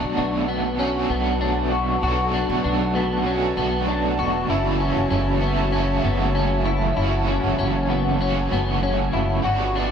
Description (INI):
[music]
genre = dream pop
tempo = 97 BPM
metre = 4/4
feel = straight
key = unclear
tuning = A4 = 441 Hz
[part]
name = crunchy overdriven guitar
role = accompaniment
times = 0.0-9.9 s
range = F#2 to F#4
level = -25 LUFS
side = right 3 dB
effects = tremolo, lush chorus, dub echo
[part]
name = hollow soft pad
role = sustained chords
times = 0.0-9.9 s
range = F#4 to A5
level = -27 LUFS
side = left 1 dB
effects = chorus
[part]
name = clean electric guitar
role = arpeggios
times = 0.0-9.9 s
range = B3 to F#4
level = -25 LUFS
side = left 3 dB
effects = ensemble chorus, dub echo
[part]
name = upright bass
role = bass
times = 0.0-9.9 s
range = E1 to B1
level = -24 LUFS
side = equal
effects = none
[sound]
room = moderate spring reverb, RT60 2.0 s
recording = echo-heavy mix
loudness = -19 LUFS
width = side -7 dB against mid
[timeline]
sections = 0.0-9.9 A section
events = none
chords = 0.0 Bm7; 4.5 F#m7